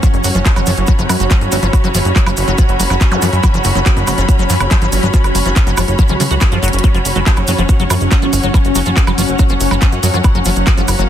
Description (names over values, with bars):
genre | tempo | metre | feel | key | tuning
psychedelic trance | 141 BPM | 4/4 | straight | unclear | A4 = 440 Hz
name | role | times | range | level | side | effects
evolving wavetable pad | sustained chords | 0.0-11.1 s | F#3 to F#4 | -20 LUFS | right 1 dB | phaser, built-in reverb, tremolo, sidechain pumping
liquid acid bass | riff | 0.0-11.0 s | E#3 to F#4 | -21 LUFS | moving between left 4 dB and right 4 dB | chorus, auto-pan, sidechain pumping, tape echo
electronic kick drum | drums | 0.0-10.8 s | none | -12 LUFS | equal | none
garage drum kit | drums | 0.0-11.1 s | handclaps, hi-hat, woodblock | -21 LUFS | right 1 dB | none
cabasa | percussion | 0.0-11.1 s | none | -26 LUFS | right 4 dB | none
rich studio string section | texture | 0.0-11.1 s | C#4 to B5 | -20 LUFS | left 2 dB | sidechain pumping
plucky analog bass | bass | 0.1-11.1 s | F#1 to F#2 | -16 LUFS | equal | none
zap | sound effects | 3.1-3.2 s | none | -24 LUFS | equal | none
room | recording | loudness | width
little or no reverb | dense, heavily limited modern master | -10 LUFS | side -10 dB against mid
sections
0.0-11.1 A section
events
drum fill 6.6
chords
0.0 F#5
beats
| 0.03 0.46 0.88 1.31 | 1.73 2.16 2.58 3.01 | 3.44 3.86 4.29 4.71 | 5.14 5.56 5.99 6.41 | 6.84 7.26 7.69 8.12 | 8.54 8.97 9.39 9.82 | 10.24 10.67